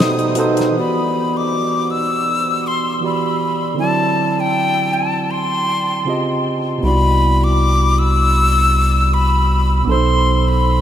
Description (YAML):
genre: R&B, neo-soul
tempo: 79 BPM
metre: 4/4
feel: swing 57% on 16ths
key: E minor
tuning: A4 = 439 Hz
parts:
  - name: breathy bright jazz flute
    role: melody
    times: 0.0-10.8 s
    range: G5 to E6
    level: -18 LUFS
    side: left 2 dB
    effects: diffuse ambient delay
  - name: barky tine electric piano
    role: accompaniment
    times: 0.0-10.8 s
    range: B2 to D#5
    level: -19 LUFS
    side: moving between equal and right 7 dB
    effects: auto-pan
  - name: pedal harmonium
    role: sustained chords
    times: 0.0-0.7 s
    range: G3 to D#4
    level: -30 LUFS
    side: equal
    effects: none
  - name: damped 70s drum kit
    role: drums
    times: 0.0-0.7 s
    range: hi-hat, snare drum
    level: -25 LUFS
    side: left 1 dB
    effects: none
  - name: rubbery square bass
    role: bass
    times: 6.8-10.8 s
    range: B1 to C2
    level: -15 LUFS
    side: equal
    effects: none
room: wet huge ambient reverb, RT60 8.4 s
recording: dreamy mix soaked in reverb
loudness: -14 LUFS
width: side -10 dB against mid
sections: 0.7-10.8 A section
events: break 0.0-0.7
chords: 0.0 B7b9; 0.7 Em9; 3.8 D9; 6.1 C#maj9#11; 6.8 Cmaj9#11; 9.9 B7b9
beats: | 0.74 1.50 2.26 3.02 | 3.78 4.54 5.30 6.06 | 6.82 7.58 8.34 9.10 | 9.86 10.62